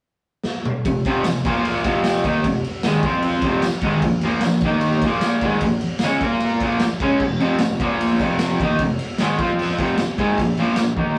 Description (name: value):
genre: garage rock duo or trio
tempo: 151 BPM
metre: 4/4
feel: straight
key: unclear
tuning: A4 = 438 Hz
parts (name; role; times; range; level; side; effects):
- raw garage drum kit; drums; 0.4-11.1 s; crash cymbal, kick drum, ride cymbal, snare drum, toms; -27 LUFS; equal; none
- raw garage guitar; riff; 0.9-11.2 s; F2 to Bb4; -20 LUFS; equal; overdrive
- tambourine; percussion; 1.3-10.9 s; none; -41 LUFS; equal; none
room: wet small room reverb, RT60 0.6 s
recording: rough rehearsal-room recording, cassette tape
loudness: -20 LUFS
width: mono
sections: 0.8-11.2 A section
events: drum fill 0.5-0.8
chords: 0.0 N.C.; 0.8 F5; 1.4 Bb5; 1.8 F5; 4.0 Bb5; 4.6 Eb5; 5.0 Bb5; 7.2 F5; 7.8 Bb5; 8.2 F5; 10.4 Bb5